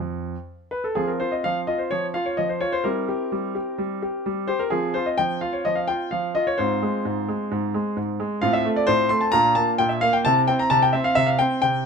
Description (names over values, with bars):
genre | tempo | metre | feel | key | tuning
classical-period piano sonatina | 129 BPM | 4/4 | rubato | F minor | A4 = 439 Hz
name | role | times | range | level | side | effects
clear concert grand piano | solo | 0.0-11.9 s | F2 to C6 | -20 LUFS | equal | none
room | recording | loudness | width
light reverb | none | -20 LUFS | side -6 dB against mid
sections
1.0-11.9 A section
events
none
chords
0.0 F5; 2.9 C7/G; 4.7 F5; 6.6 Fm/Ab; 8.4 F/A; 9.3 Bb; 10.3 C